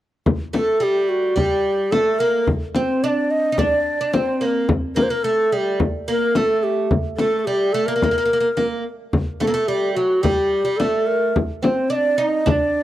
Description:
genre	Arabic maqam ensemble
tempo	108 BPM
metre	4/4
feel	straight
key	G maqam nahawand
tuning	A4 = 441 Hz
part	frame drum	percussion	0.3-12.6 s	none	-20 LUFS	left 2 dB	none
part	oud	second line	0.5-12.8 s	F#3 to Eb4	-23 LUFS	right 3 dB	none
part	breathy ney	melody	0.6-12.8 s	F#4 to Eb5	-20 LUFS	left 1 dB	none
room	small room ambience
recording	dry, close 1970s-style studio recording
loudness	-17 LUFS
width	side -13 dB against mid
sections	0.3-12.8 A section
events	none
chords	none

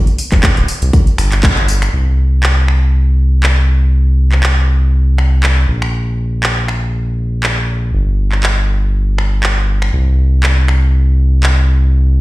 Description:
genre	deep house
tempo	120 BPM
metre	4/4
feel	swing 55% on 16ths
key	unclear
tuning	A4 = 440 Hz
part	house drum kit	drums	0.1-11.5 s	finger snaps, handclaps, hi-hat, tambourine	-18 LUFS	equal	none
part	round analog bass	bass	0.3-12.2 s	D1 to C2	-11 LUFS	equal	none
part	electronic kick drum	drums	0.3-1.5 s	none	-10 LUFS	equal	none
room	little or no reverb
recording	played on a big sound system in a bare room, stone room reverb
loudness	-11 LUFS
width	side -19 dB against mid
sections	0.0-1.9 A section; 1.9-12.2 B section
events	band accent 1.4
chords	none

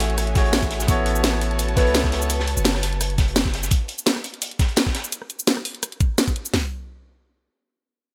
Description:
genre	liquid drum and bass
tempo	170 BPM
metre	4/4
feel	swing 54% on 16ths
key	unclear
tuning	A4 = 440 Hz
part	clear grand piano	accompaniment	0.0-2.3 s	A3 to C#5	-28 LUFS	equal	tape echo
part	warm studio string section	sustained chords	0.0-3.7 s	F#4 to A5	-34 LUFS	equal	sidechain pumping
part	long sustained 808-style bass	bass	0.0-3.7 s	F#1 to C#2	-27 LUFS	equal	none
part	crunchy breakbeat drum kit	drums	0.0-5.0 s	hi-hat, snare drum	-32 LUFS	equal	high-pass filter on hats, high-pass filter on snare, high-pass filter on room
part	drum and bass drum kit	drums	0.0-6.5 s	hi-hat, rim click, shaker, snare drum	-24 LUFS	equal	none
part	drum and bass drum kit	drums	0.4-6.6 s	hi-hat, kick drum, snare drum, toms	-24 LUFS	equal	none
part	soft struck synth lead	melody	1.8-2.0 s	B4	-29 LUFS	equal	chorus, cassette tape, tape echo
room	small room ambience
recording	none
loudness	-22 LUFS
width	mono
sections	0.0-6.5 A section; 6.5-8.1 B section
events	drop 0.0-6.5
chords	0.0 Dmaj9#11 (rootless); 0.9 A69; 6.5 N.C.

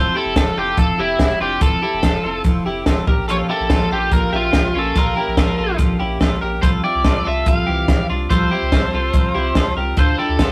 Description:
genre	jangly indie pop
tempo	144 BPM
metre	4/4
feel	straight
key	F major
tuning	A4 = 440 Hz
part	biting lead guitar	melody	0.0-10.5 s	E4 to F5	-23 LUFS	equal	overdrive
part	picked steel-string acoustic guitar	accompaniment	0.0-10.5 s	Bb2 to G4	-27 LUFS	equal	none
part	twelve-string electric guitar	arpeggios	0.0-10.5 s	E3 to E5	-26 LUFS	equal	none
part	warm sub bass	bass	0.0-10.5 s	F1 to D2	-27 LUFS	equal	none
part	compact cocktail drum kit	drums	0.4-10.5 s	hi-hat, kick drum, snare drum	-19 LUFS	equal	none
room	moderate studio reverb, RT60 0.6 s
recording	rough rehearsal-room recording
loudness	-18 LUFS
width	mono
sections	0.0-10.5 A section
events	none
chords	0.0 Fmaj7; 3.1 Bbm6; 6.6 Csus4; 10.0 Dm

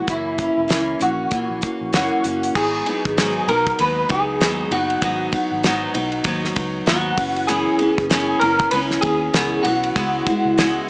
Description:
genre	indie pop, bedroom pop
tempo	97 BPM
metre	4/4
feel	swing 60% on 16ths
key	unclear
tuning	A4 = 440 Hz
part	electric guitar at the edge of break-up	melody	0.0-10.9 s	E4 to B4	-21 LUFS	equal	ensemble chorus
part	picked steel-string acoustic guitar	accompaniment	0.0-10.9 s	F#2 to E4	-21 LUFS	equal	lush chorus, vibrato effect
part	vintage muted fingered electric bass	bass	0.1-10.8 s	E1 to A#2	-31 LUFS	equal	none
part	damped 70s drum kit	drums	0.1-10.8 s	crash cymbal, hi-hat, kick drum, ride cymbal, snare drum	-23 LUFS	equal	none
room	light reverb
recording	small speaker sound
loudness	-17 LUFS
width	side -28 dB against mid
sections	0.0-2.6 A section; 2.6-10.9 B section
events	none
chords	0.1 F#7; 2.6 G#m7; 7.2 F#7sus4; 10.0 C#m7

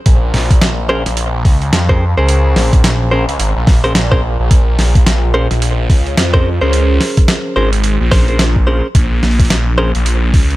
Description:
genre	glitch hop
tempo	108 BPM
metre	4/4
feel	swing 60% on 16ths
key	Bb minor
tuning	A4 = 440 Hz
part	phased detuned saw bass	bass	0.1-10.6 s	Ab1 to F2	-14 LUFS	equal	phaser, overdrive
part	boom bap sampler-style drum kit	drums	0.1-10.6 s	hi-hat, snare drum	-17 LUFS	equal	none
part	electronic kick drum	drums	0.1-10.5 s	none	-10 LUFS	equal	none
part	direct-recorded clean electric guitar	stabs	0.9-9.9 s	Db4 to C5	-18 LUFS	equal	sidechain pumping, digital delay
room	little or no reverb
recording	none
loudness	-10 LUFS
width	side -17 dB against mid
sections	0.0-10.6 A section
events	none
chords	0.0 Bbm9

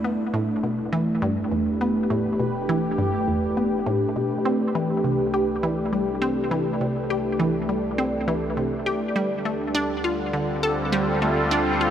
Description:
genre	ambient, sequencer-driven space music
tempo	102 BPM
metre	4/4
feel	straight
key	unclear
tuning	A4 = 440 Hz
part	sweeping resonant pad	sustained chords	0.0-11.9 s	D3 to B4	-24 LUFS	equal	wide subtle chorus
part	resonant blip pluck	riff	0.0-11.9 s	E2 to A4	-25 LUFS	equal	chorus, analog delay
part	fat analog bass	bass	0.0-11.9 s	E1 to D2	-37 LUFS	equal	none
room	wet huge ambient reverb, RT60 8.2 s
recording	none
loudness	-21 LUFS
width	side -9 dB against mid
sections	0.0-11.9 A section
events	fade-in on analog synth bass 0.0-11.9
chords	0.0 Em; 4.5 C; 9.2 Dm

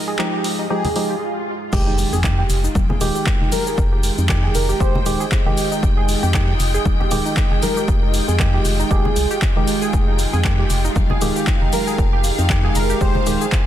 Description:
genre	deep house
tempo	117 BPM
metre	4/4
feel	swing 56% on 16ths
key	F minor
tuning	A4 = 440 Hz
part	deep dark ambient pad	sustained chords	0.0-13.7 s	Ab3 to G5	-29 LUFS	left 1 dB	chorus, built-in reverb, sidechain pumping
part	percussive organ stab	stabs	0.0-13.5 s	Eb3 to G4	-24 LUFS	right 2 dB	chorus, sidechain pumping, ping-pong delay
part	clear symphonic string section	texture	0.0-13.7 s	Ab3 to G5	-30 LUFS	left 2 dB	sidechain pumping
part	soft string machine	texture	0.0-1.2 s	Ab3 to Ab4	-40 LUFS	left 1 dB	none
part	warbly dusty pluck	arpeggios	0.1-13.5 s	Eb4 to Ab4	-27 LUFS	right 4 dB	chorus, sidechain pumping, tape echo
part	punchy analog drum machine	drums	0.2-13.6 s	crash cymbal, handclaps, hi-hat, shaker	-26 LUFS	equal	none
part	airy dreamy lead	melody	0.7-13.4 s	Ab4 to C5	-27 LUFS	left 1 dB	chorus, tape echo
part	swell and impact	sound effects	0.9-3.8 s	none	-29 LUFS	equal	none
part	congas	percussion	0.8-13.2 s	none	-28 LUFS	left 3 dB	none
part	organ-like FM bass	bass	1.7-13.4 s	Eb1 to F2	-21 LUFS	equal	sidechain pumping
part	electronic kick drum	drums	1.7-13.6 s	none	-20 LUFS	equal	none
room	light reverb, digital ambience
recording	dense, heavily limited modern master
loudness	-16 LUFS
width	side -11 dB against mid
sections	0.0-1.7 A section; 1.7-13.7 B section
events	swell 0.9-1.7; stop 1.2-1.7; drop 1.7-13.7; impact 1.7-3.8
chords	0.0 Fm9

